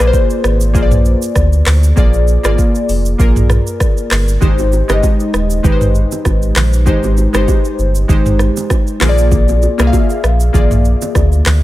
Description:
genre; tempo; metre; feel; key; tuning
afrobeats; 98 BPM; 4/4; swing 55% on 16ths; unclear; A4 = 440 Hz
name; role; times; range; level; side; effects
glassy digital keys; accompaniment; 0.0-11.6 s; Ab3 to F5; -16 LUFS; left 2 dB; chorus
sub bass with octave; bass; 0.0-11.6 s; Eb1 to D2; -12 LUFS; equal; none
afro-pop drum kit; drums; 0.0-11.6 s; handclaps, hi-hat, kick drum, rim click, shaker, toms; -15 LUFS; equal; none
congas and bongos; percussion; 4.4-11.6 s; none; -24 LUFS; right 6 dB; none
room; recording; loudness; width
little or no reverb; none; -10 LUFS; side -16 dB against mid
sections
0.0-11.6 A section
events
none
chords
0.0 Bb7; 4.4 Abmaj7; 9.0 Bb7

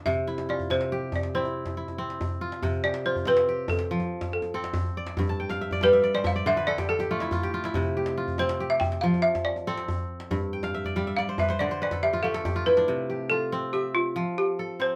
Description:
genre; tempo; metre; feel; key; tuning
west african traditional, West African string and xylophone music; 94 BPM (dotted quarters); 12/8; straight; C major; A4 = 440 Hz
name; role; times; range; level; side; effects
kora; arpeggios; 0.0-15.0 s; G2 to A5; -32 LUFS; equal; none
balafon; melody; 0.1-15.0 s; F4 to G5; -27 LUFS; equal; none
djembe; percussion; 0.1-12.9 s; none; -35 LUFS; equal; none
room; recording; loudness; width
wet studio reverb, RT60 0.5 s; none; -27 LUFS; mono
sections
0.0-2.6 A section; 2.6-12.9 B section; 12.9-15.0 C section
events
balafon solo 2.6-12.9; kora fill 5.3-7.7, 10.5-12.9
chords
0.1 C; 2.6 C5; 3.9 F; 5.2 G5; 6.5 D5; 7.7 C5; 9.0 F; 10.3 N.C.; 11.6 Dm; 12.9 C; 14.2 F

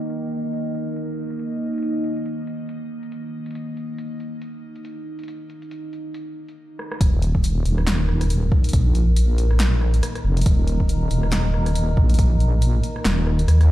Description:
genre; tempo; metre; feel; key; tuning
deep dubstep; 139 BPM; 4/4; swing 58% on 16ths, half-time; unclear; A4 = 440 Hz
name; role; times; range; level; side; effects
overtone-sweeping drone; sustained chords; 0.0-13.7 s; Eb3 to Eb5; -29 LUFS; equal; chorus, built-in reverb
deep house drum kit; drums; 0.0-13.7 s; handclaps, hi-hat, rim click, snare drum; -28 LUFS; equal; overdrive, low-pass filter on hats, low-pass filter on snare, low-pass filter on room
deep soft wobble bass; bass; 7.0-13.7 s; Eb1 to Eb2; -18 LUFS; equal; chorus
electronic kick drum; drums; 7.0-12.3 s; none; -18 LUFS; equal; overdrive
room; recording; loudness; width
digital ambience; played on a big sound system in a bare room, large studio reverb, low-pass filter; -18 LUFS; side -15 dB against mid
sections
0.0-7.0 A section; 7.0-13.7 B section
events
filter sweep on synth drone 0.0-7.0; filter sweep 0.0-7.0; drum fill 6.8; drop 7.0-13.7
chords
0.0 Eb5

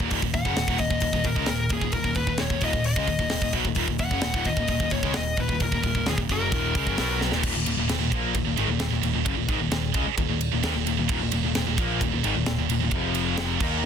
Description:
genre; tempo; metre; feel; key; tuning
heavy metal; 131 BPM; 4/4; straight; Eb minor; A4 = 439 Hz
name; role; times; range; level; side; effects
distorted electric guitar; riff; 0.0-13.8 s; Eb2 to Eb4; -29 LUFS; left 11 dB; distortion
scooped high-gain guitar; riff; 0.0-13.9 s; Eb2 to Eb4; -29 LUFS; right 15 dB; distortion
picked electric bass; bass; 0.0-13.9 s; Eb1 to Eb2; -29 LUFS; right 1 dB; none
tight metal drum kit; drums; 0.0-13.7 s; crash cymbal, hi-hat, kick drum, ride cymbal, snare drum; -28 LUFS; right 1 dB; none
high-gain lead guitar; melody; 0.3-7.2 s; Ab4 to Gb5; -29 LUFS; left 3 dB; distortion
room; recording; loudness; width
little or no reverb; dense, heavily limited modern master; -22 LUFS; side -8 dB against mid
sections
0.0-7.4 A section; 7.4-13.9 B section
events
drum fill 7.2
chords
0.0 Ebm; 7.4 Eb5; 12.9 F5

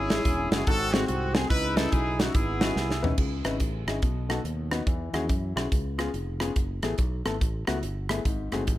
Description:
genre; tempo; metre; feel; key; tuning
uptempo gospel; 142 BPM; 4/4; swing 64% on 8ths; C# minor; A4 = 440 Hz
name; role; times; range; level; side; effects
warm horn section; melody; 0.0-3.1 s; B3 to B4; -29 LUFS; equal; tape echo
warm upright piano; accompaniment; 0.0-8.8 s; G#2 to B4; -32 LUFS; left 3 dB; none
fingered electric bass; bass; 0.0-8.8 s; E1 to F#2; -32 LUFS; equal; none
modern studio drum kit; drums; 0.1-8.8 s; crash cymbal, hi-hat, kick drum, rim click, snare drum, toms; -27 LUFS; equal; none
room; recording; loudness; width
little or no reverb; none; -24 LUFS; side -15 dB against mid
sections
0.0-3.2 A section; 3.2-8.8 B section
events
drum fill 2.8-3.2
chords
0.0 C#m/G#; 0.7 G#7b9; 1.5 C#m9; 3.2 C#madd9; 4.0 B; 4.9 E69; 5.7 C#7; 6.6 F#m11; 8.2 G#7b9

